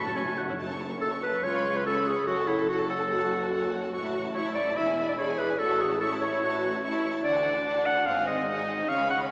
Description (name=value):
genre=classical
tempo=144 BPM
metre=4/4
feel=straight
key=F# minor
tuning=A4 = 439 Hz
part: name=rich chamber violin section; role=melody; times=0.0-9.3 s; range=F#5 to C#6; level=-40 LUFS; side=equal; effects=none
part: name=clear clarinet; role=second line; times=0.0-9.2 s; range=E4 to F#5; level=-30 LUFS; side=equal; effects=none
part: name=clear oboe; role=second line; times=0.0-0.6 s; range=F#5 to A5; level=-38 LUFS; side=equal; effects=none
part: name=warm symphonic violin section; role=second line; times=0.0-9.3 s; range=A3 to E5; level=-41 LUFS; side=equal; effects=none
part: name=concert harp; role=arpeggios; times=0.0-9.3 s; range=E2 to D5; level=-40 LUFS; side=equal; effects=none
part: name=warm symphonic cello section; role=bass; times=0.0-9.3 s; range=C#2 to A3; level=-43 LUFS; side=equal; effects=none
part: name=timpani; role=percussion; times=0.0-2.0 s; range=F#2 to C#3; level=-43 LUFS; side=equal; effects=none
part: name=warm symphonic viola section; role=accompaniment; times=0.1-9.3 s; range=B#3 to A4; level=-35 LUFS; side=equal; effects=none
part: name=clear symphonic double bass section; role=bass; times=0.1-9.3 s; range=E1 to D2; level=-42 LUFS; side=equal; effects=none
room=wet concert hall reverb, RT60 1.9 s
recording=small speaker sound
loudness=-28 LUFS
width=mono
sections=0.6-9.3 A section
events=timpani fill 0.0-0.6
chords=0.0 F#m/A; 0.6 F#m; 1.4 C#7; 2.3 F#m; 3.9 A; 4.8 E7; 5.6 A; 7.2 D; 8.1 G#7